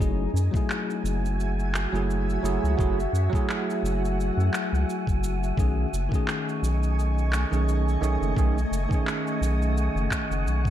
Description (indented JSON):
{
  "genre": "sunset chillout",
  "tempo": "86 BPM",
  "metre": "4/4",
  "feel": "swing 56% on 16ths",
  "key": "F# dorian",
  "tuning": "A4 = 441 Hz",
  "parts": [
    { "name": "bell-like tine electric piano", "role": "accompaniment", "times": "0.0-10.7 s", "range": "D#3 to G#4", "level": "-29 LUFS", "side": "moving between left 8 dB and right 6 dB", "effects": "auto-pan, ping-pong delay" },
    { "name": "shimmering ambient pad", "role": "sustained chords", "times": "0.0-10.7 s", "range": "A3 to C#6", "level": "-32 LUFS", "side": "right 1 dB", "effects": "chorus, built-in reverb" },
    { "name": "round analog bass", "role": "bass", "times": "0.0-10.7 s", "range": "F#1 to F#2", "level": "-25 LUFS", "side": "equal", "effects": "none" },
    { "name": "electronic cabasa and handclaps", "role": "drums", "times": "0.0-10.7 s", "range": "none", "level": "-33 LUFS", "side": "equal", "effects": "none" },
    { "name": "wind-like tuned noise texture", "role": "texture", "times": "0.3-10.7 s", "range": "G#5", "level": "-39 LUFS", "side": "right 4 dB", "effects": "built-in reverb" },
    { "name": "electronic kick drum", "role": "drums", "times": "0.5-10.7 s", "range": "none", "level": "-26 LUFS", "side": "equal", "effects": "none" }
  ],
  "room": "light reverb",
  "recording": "dark, warm production",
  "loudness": "-23 LUFS",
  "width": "side -11 dB against mid",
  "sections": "0.0-10.7 A section",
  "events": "none",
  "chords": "0.0 F#m9; 5.6 B13"
}